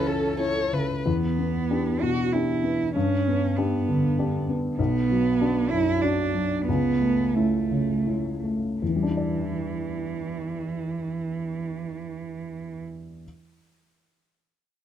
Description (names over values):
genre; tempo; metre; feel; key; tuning
neoclassical piano and strings; 78-100 BPM; 3/4; rubato; E dorian; A4 = 441 Hz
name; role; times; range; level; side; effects
warm violin; melody; 0.0-1.1 s; A4 to C#5; -28 LUFS; left 5 dB; none
warm cello; second line; 0.0-12.8 s; E3 to F#4; -27 LUFS; right 6 dB; none
warm upright piano; accompaniment; 0.0-13.3 s; B1 to D5; -26 LUFS; left 3 dB; none
warm viola; accompaniment; 0.0-0.8 s; A4; -34 LUFS; right 4 dB; none
folk marimba with soft mallets; arpeggios; 0.1-0.8 s; A4 to A5; -38 LUFS; right 5 dB; none
room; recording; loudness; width
light reverb; close, detailed microphones; -23 LUFS; side -10 dB against mid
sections
0.0-1.1 A section; 1.1-8.8 B section; 8.8-13.2 C section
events
slowing down 3.9-8.8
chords
0.0 A/C#; 1.1 Em7; 2.9 G; 4.8 Bm; 6.7 A/C#; 8.8 Em7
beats
0.40 | 1.05 1.69 2.33 | 2.95 3.57 4.17 | 4.78 5.40 6.02 | 6.67 7.35 8.06 | 8.81 9.54 10.28 | 11.02 11.76 12.49